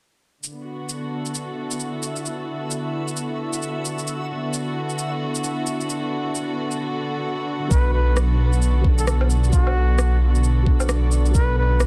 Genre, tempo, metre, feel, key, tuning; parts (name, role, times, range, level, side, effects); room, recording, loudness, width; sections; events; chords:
future garage; 132 BPM; 4/4; swing 60% on 16ths; B minor; A4 = 439 Hz
dark studio string section; sustained chords; 0.4-11.9 s; D3 to A4; -29 LUFS; equal; sidechain pumping
electronic shaker, rim click and woodblock; drums; 0.4-11.9 s; -30 LUFS; equal; soft clipping on snare
backwards swelling texture; texture; 1.2-11.9 s; D4 to E5; -38 LUFS; equal; built-in reverb
trumpet with bucket mute; melody; 7.7-11.8 s; F#4 to B4; -30 LUFS; equal; analog delay
felt-muted upright piano; accompaniment; 7.7-11.9 s; F#3 to A4; -33 LUFS; equal; sidechain pumping, analog delay
dark detuned saw bass; bass; 7.7-11.9 s; B1; -20 LUFS; equal
electronic kick drum; drums; 7.7-11.5 s; -20 LUFS; equal
light reverb, studio ambience; dense, heavily limited modern master; -22 LUFS; mono
0.4-7.7 A section; 7.7-11.9 B section
0.4 Bm7